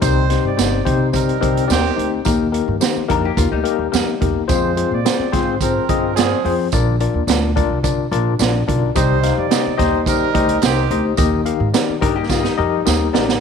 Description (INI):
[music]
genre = uptempo 1960s-style soul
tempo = 108 BPM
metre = 4/4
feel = straight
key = unclear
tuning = A4 = 440 Hz
[part]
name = warm horn section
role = second line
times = 0.0-11.0 s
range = Eb3 to D5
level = -23 LUFS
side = right 12 dB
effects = none
[part]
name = tine electric piano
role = accompaniment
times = 0.0-13.4 s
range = Bb2 to F5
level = -19 LUFS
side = left 11 dB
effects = medium stereo tremolo
[part]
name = upright bass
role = bass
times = 0.0-13.4 s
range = G1 to C3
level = -20 LUFS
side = right 1 dB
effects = none
[part]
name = swinging big-band drum kit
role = drums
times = 0.0-13.4 s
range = hi-hat, kick drum, snare drum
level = -20 LUFS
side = right 6 dB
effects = none
[part]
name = tambourine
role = percussion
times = 0.0-13.0 s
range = none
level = -29 LUFS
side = right 14 dB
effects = none
[part]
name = hollow-body jazz guitar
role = riff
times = 3.1-4.3, 12.0-13.2 s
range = G3 to Bb4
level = -24 LUFS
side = left 10 dB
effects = none
[sound]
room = light reverb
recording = 1960s-style stereo with parts hard left and right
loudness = -15 LUFS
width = side -6 dB against mid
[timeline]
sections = 0.0-13.4 A section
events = drum fill 12.3-13.4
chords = 0.0 Cm; 2.3 Eb; 4.5 Fm; 6.7 Bb; 9.0 Cm; 11.2 Eb